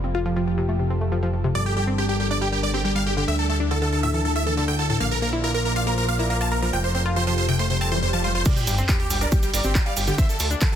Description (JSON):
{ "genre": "uplifting trance", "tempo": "139 BPM", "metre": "4/4", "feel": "straight", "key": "G dorian", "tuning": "A4 = 441 Hz", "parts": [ { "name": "lush unison pad", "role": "sustained chords", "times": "0.0-8.4 s", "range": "D3 to D5", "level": "-29 LUFS", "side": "equal", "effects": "chorus, sidechain pumping" }, { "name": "analog pluck", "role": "arpeggios", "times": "0.0-10.8 s", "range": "F2 to Bb4", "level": "-27 LUFS", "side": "left 1 dB", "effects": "chorus, sidechain pumping, ping-pong delay" }, { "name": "fat analog bass", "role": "bass", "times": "0.0-10.6 s", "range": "F1 to D2", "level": "-25 LUFS", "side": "equal", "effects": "sidechain pumping" }, { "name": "big supersaw lead", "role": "melody", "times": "1.6-10.8 s", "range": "G4 to A5", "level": "-25 LUFS", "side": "right 1 dB", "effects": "phaser, sidechain pumping, ping-pong delay" }, { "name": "swell and sub drop", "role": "sound effects", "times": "7.8-10.2 s", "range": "none", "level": "-29 LUFS", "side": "equal", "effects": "none" }, { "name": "warm grand piano", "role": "second line", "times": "8.5-10.8 s", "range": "G4 to F5", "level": "-33 LUFS", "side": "equal", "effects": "sidechain pumping, ping-pong delay" }, { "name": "electronic kick drum", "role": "drums", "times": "8.5-10.7 s", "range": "none", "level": "-21 LUFS", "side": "equal", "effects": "none" }, { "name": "punchy analog drum machine", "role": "drums", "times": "8.5-10.8 s", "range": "crash cymbal, handclaps, hi-hat", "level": "-28 LUFS", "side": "right 2 dB", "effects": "sidechain pumping on cymbals, low-pass filter on cymbals, sidechain pumping on hats, low-pass filter on hats, low-pass filter on snare" }, { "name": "cabasa", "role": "percussion", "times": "8.5-10.7 s", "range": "none", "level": "-32 LUFS", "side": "right 5 dB", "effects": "none" } ], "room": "light reverb", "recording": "dense, heavily limited modern master", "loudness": "-20 LUFS", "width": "side -9 dB against mid", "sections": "0.0-8.5 A section; 8.5-10.8 B section", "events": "filter sweep on synth arpeggio sound 0.0-8.5; swell 7.8-8.5; drop 8.5-10.8; impact 8.5-10.2", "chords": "0.0 Fadd9; 1.6 Gmadd9; 3.3 Dsus2; 5.0 Bbadd9; 6.7 Fadd9; 8.5 G5; 10.2 D5" }